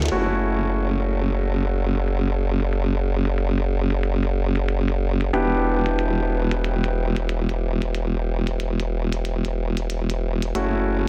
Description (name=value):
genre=glitch hop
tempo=92 BPM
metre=4/4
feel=swing 60% on 16ths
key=unclear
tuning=A4 = 440 Hz
part: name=formant-sweep wobble bass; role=bass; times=0.0-11.1 s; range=E1 to F#1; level=-24 LUFS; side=equal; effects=chorus
part: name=glitchy drum kit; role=drums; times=0.0-10.7 s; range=hi-hat, snare drum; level=-35 LUFS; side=equal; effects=low-pass filter on hats, small room reverb, soft clipping on snare, low-pass filter on snare, low-pass filter on toms
part: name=warm grand piano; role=stabs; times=0.1-11.1 s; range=A3 to G4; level=-28 LUFS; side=equal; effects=dub echo
room=little or no reverb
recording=dense, heavily limited modern master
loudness=-23 LUFS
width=mono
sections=0.1-11.1 A section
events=filter sweep on drum 0.1-11.1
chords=0.1 F#m7; 5.3 Em7; 10.6 F#m7